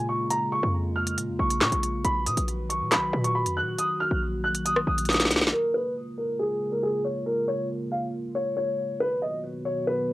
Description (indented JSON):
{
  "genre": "hip hop, drill",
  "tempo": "138 BPM",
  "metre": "4/4",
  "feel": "half-time",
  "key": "Bb phrygian",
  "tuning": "A4 = 440 Hz",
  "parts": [
    { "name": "dark grand piano", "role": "melody", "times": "0.0-10.1 s", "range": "Ab4 to F#6", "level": "-26 LUFS", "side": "equal", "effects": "low-pass filter, cassette tape" },
    { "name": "dark analog pad", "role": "sustained chords", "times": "0.0-10.1 s", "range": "B2 to B4", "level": "-32 LUFS", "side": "equal", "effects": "chorus, low-pass filter, cassette tape" },
    { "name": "short 808-style bass", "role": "bass", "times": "0.0-5.5 s", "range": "Bb1 to Bb2", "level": "-29 LUFS", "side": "equal", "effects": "none" },
    { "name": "drill drum kit", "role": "drums", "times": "0.3-5.6 s", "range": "handclaps, hi-hat, rim click, snare drum", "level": "-24 LUFS", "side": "equal", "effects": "none" }
  ],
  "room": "light reverb",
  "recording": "home recording on cassette",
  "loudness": "-24 LUFS",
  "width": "side -17 dB against mid",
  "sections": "0.0-5.5 A section; 5.5-10.1 B section",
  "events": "drum fill 5.1-5.5; filter sweep 5.5-10.1",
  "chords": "0.0 Bbm7; 2.0 B/Bb; 3.8 Ebm/Bb; 5.5 Bbm7; 9.0 B",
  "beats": "| 0.31 0.74 1.18 1.61 | 2.04 2.48 2.92 3.35 | 3.78 4.22 4.65 5.09 | 5.52 5.96 6.39 6.83 | 7.26 7.70 8.13 8.57 | 9.00 9.44 9.87"
}